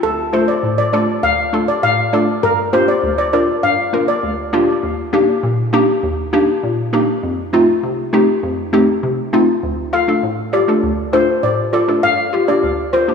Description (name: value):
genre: dancehall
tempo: 100 BPM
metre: 4/4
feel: straight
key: D phrygian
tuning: A4 = 439 Hz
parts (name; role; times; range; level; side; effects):
- steel pan; melody; 0.0-4.2, 9.9-13.1 s; A4 to F5; -17 LUFS; left 1 dB; diffuse ambient delay
- hollow square pluck; accompaniment; 0.0-13.1 s; D2 to Bb4; -15 LUFS; left 1 dB; chorus
room: wet plate reverb, RT60 2.6 s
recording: dreamy mix soaked in reverb, small room reverb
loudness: -13 LUFS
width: side -6 dB against mid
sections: 0.0-9.6 A section; 9.6-13.1 B section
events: none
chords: 0.0 Dm; 2.4 Gm7; 4.8 Ebmaj7; 7.2 F7; 9.6 Dm; 12.0 Gm7